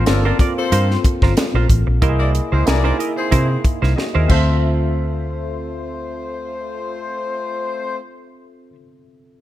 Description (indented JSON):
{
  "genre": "polished 1980s jazz-funk pop",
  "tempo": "92 BPM",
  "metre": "4/4",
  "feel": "swing 54% on 16ths",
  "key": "D minor",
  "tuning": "A4 = 440 Hz",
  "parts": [
    { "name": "mellow horn section", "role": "second line", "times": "0.0-8.0 s", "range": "A3 to D5", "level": "-26 LUFS", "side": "left 3 dB", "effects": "none" },
    { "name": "tine electric piano", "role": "accompaniment", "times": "0.0-9.4 s", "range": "Bb3 to A5", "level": "-25 LUFS", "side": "left 2 dB", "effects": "medium stereo tremolo, lush chorus" },
    { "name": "semi-hollow electric guitar", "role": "riff", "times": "0.0-8.8 s", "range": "E4 to E5", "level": "-25 LUFS", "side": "right 7 dB", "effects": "analog chorus" },
    { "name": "vintage muted fingered electric bass", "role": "bass", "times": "0.0-8.7 s", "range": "G1 to C3", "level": "-17 LUFS", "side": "equal", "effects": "none" },
    { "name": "tight funk drum kit", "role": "drums", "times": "0.1-4.5 s", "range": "crash cymbal, hi-hat, kick drum, snare drum", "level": "-18 LUFS", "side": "equal", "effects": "gated reverb" }
  ],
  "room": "studio reverb",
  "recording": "none",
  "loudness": "-16 LUFS",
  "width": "side -14 dB against mid",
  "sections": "0.0-4.6 A section; 4.6-7.2 B section",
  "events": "drum fill 4.0-4.6",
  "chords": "0.0 Gm11; 2.0 C7alt; 4.3 Dm9"
}